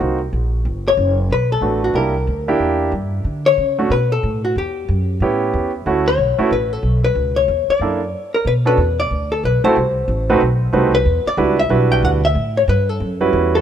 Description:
jazz, small-group swing and bop; 185 BPM; 4/4; swing 62% on 8ths; D major, B minor from 8.5 s; A4 = 438 Hz
clear concert grand piano; accompaniment; 0.0-13.6 s; G3 to B4; -18 LUFS; right 3 dB
upright bass; bass; 0.0-13.6 s; F#1 to D3; -19 LUFS; equal
hollow-body jazz guitar; melody; 0.9-13.6 s; F#4 to G5; -18 LUFS; left 4 dB
light reverb, studio ambience; rough home demo mix; -15 LUFS; side -9 dB against mid
0.0-8.5 A section; 8.5-13.6 B section
0.0 Ebm6; 0.7 Gmaj9; 2.0 C9; 3.3 Dmaj7; 3.9 F#madd11 (rootless); 4.6 Emadd9; 5.2 A7; 5.9 Dmaj9; 7.2 C#m7; 7.8 F#7alt; 8.5 Bm7; 9.8 F#dim; 10.4 B7b9; 11.1 Em9; 12.4 A13
0.00 0.33 | 0.65 0.98 1.30 1.63 | 1.95 2.28 2.60 2.93 | 3.25 3.58 3.90 4.23 | 4.55 4.88 5.20 5.53 | 5.85 6.18 6.50 6.83 | 7.15 7.48 7.80 8.13 | 8.46 8.78 9.11 9.43 | 9.76 10.08 10.41 10.73 | 11.06 11.38 11.71 12.03 | 12.36 12.68 13.01 13.33

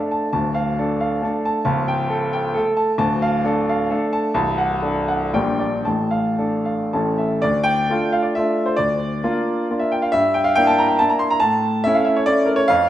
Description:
classical, romantic triple-time dance for piano with dotted rhythms; 106-149 BPM; 3/4; rubato; D minor; A4 = 441 Hz
bright grand piano; solo; 0.0-12.9 s; C1 to C6; -17 LUFS; equal
wet recital hall reverb, RT60 1.2 s; -17 LUFS; side -12 dB against mid
0.0-7.4 A section; 7.4-12.9 B section
0.3 Dm; 1.6 A7/C#; 3.0 Dm; 4.3 D7/C; 5.3 Gm/Bb; 5.8 Dm/A; 6.9 A; 7.4 Dm; 8.8 Bb/D; 10.1 Em7b5/G; 11.4 A
| 0.31 0.76 1.22 | 1.64 2.09 2.54 | 2.97 3.45 3.91 | 4.35 4.82 5.33 | 5.84 6.38 6.92 | 7.43 7.90 8.36 | 8.77 9.21 9.69 | 10.13 10.56 11.00 | 11.41 11.85 12.29 | 12.70

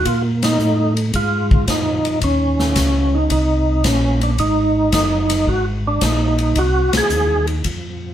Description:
soul jazz organ trio; 111 BPM; 4/4; swing 69% on 8ths; Ab mixolydian; A4 = 440 Hz
percussive tonewheel organ; melody; 0.0-7.5 s; Db4 to Ab4; -18 LUFS; right 1 dB; slow rotary speaker, overdrive, chorus vibrato
tonewheel organ; bass; 0.0-8.1 s; Gb1 to Bb2; -19 LUFS; equal; chorus vibrato
swinging big-band drum kit; drums; 0.1-7.8 s; hi-hat, kick drum, ride cymbal, snare drum; -22 LUFS; left 2 dB
moderate studio reverb, RT60 0.8 s; band playing live in one room; -15 LUFS; side -11 dB against mid
0.0-8.1 A section
band accent 0.3, 6.8
0.1 Bb5; 2.2 Eb5; 4.4 Ab7
| 0.05 0.59 1.14 1.68 | 2.22 2.76 3.31 3.85 | 4.39 4.93 5.48 6.02 | 6.56 7.11 7.65

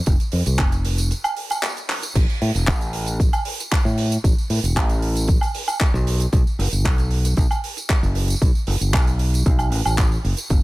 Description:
nu-disco, nu disco; 115 BPM; 4/4; straight; A4 = 442 Hz
fingered electric bass; bass; 0.1-10.6 s; E1 to A2; -20 LUFS; equal
damped 70s drum kit; drums; 0.1-10.6 s; crash cymbal, handclaps, hi-hat, tambourine, woodblock; -25 LUFS; right 2 dB
electronic kick drum; drums; 0.1-10.6 s; -19 LUFS; equal
little or no reverb; -18 LUFS; side -19 dB against mid
0.0-10.6 A section
break 1.1-2.2; drum fill 1.9
| 0.07 0.59 1.11 1.63 | 2.15 2.68 3.20 3.72 | 4.24 4.76 5.29 5.81 | 6.33 6.85 7.37 7.89 | 8.41 8.94 9.46 9.98 | 10.50

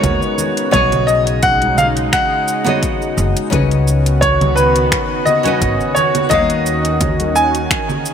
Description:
sunset chillout; 86 BPM; 4/4; swing 54% on 16ths; A4 = 440 Hz
bright baby grand piano; melody; 0.0-8.1 s; B4 to G#5; -16 LUFS; equal; tape echo
nylon-string guitar; accompaniment; 0.0-7.7 s; C#3 to E#5; -22 LUFS; moving between left 7 dB and right 7 dB; auto-pan, tape echo
lush unison pad; sustained chords; 0.0-8.1 s; C#3 to G#4; -22 LUFS; right 1 dB; chorus
upright bass; bass; 0.0-7.7 s; F#1 to D#2; -18 LUFS; equal
deep house drum kit; drums; 0.0-8.1 s; cabasa, congas, finger snaps, hi-hat; -21 LUFS; right 3 dB; overdrive
electronic kick drum; drums; 0.0-7.9 s; -22 LUFS; equal; overdrive
congas; percussion; 0.4-7.3 s; -28 LUFS; left 5 dB
light reverb, small room reverb; -12 LUFS; side -8 dB against mid
0.0-8.1 A section
0.0 G#m11; 0.7 B69; 3.5 C#9sus4; 6.3 D#m7
0.03 | 0.73 1.43 2.13 2.82 | 3.52 4.22 4.92 5.62 | 6.31 7.01 7.71

